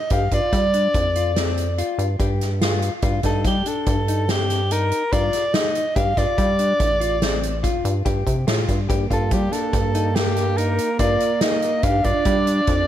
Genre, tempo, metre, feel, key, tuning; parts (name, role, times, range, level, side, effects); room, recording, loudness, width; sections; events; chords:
progressive instrumental, band music in an uneven meter; 143 BPM; 7/4; straight; A4 = 440 Hz
warm soprano saxophone; melody; 0.0-12.9 s; G4 to F5; -22 LUFS; equal; slapback echo
mellow electric guitar; arpeggios; 0.1-12.8 s; Bb3 to G4; -28 LUFS; left 6 dB; wide subtle chorus, slapback echo
rubbery square bass; bass; 0.1-12.9 s; A1 to G3; -22 LUFS; equal
soft-mallet drum kit; drums; 0.1-12.8 s; hi-hat, kick drum, snare drum; -24 LUFS; equal
mellow alto saxophone; second line; 8.9-12.9 s; Bb3 to D4; -26 LUFS; right 4 dB; slapback echo
moderate lush hall reverb, RT60 2.0 s, studio reverb; big arena sound; -18 LUFS; side -11 dB against mid
0.0-12.9 A section
0.1 Dmadd11/F; 3.0 Cm/G (rootless); 6.0 Dm7; 8.9 Ebadd9/G; 11.8 Ebmaj9 (rootless)